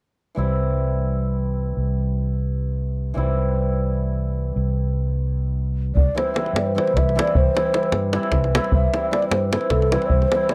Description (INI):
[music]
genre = balkan folk, Balkan wedding band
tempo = 302 BPM (eighths)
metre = 7/8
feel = straight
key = C major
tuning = A4 = 440 Hz
[part]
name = cimbalom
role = accompaniment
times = 0.3-10.5 s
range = E3 to E4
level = -28 LUFS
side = equal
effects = none
[part]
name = fingered electric bass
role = bass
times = 0.4-10.2 s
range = C2 to G2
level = -24 LUFS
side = equal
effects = none
[part]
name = breathy mellow low ney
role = melody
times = 6.0-10.5 s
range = A4 to E5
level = -25 LUFS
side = equal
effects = none
[part]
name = davul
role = percussion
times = 6.0-10.5 s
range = none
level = -24 LUFS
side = equal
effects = none
[sound]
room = little or no reverb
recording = dry, close 1970s-style studio recording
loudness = -21 LUFS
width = mono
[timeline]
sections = 0.4-6.0 A section; 6.0-10.5 B section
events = none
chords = 0.4 C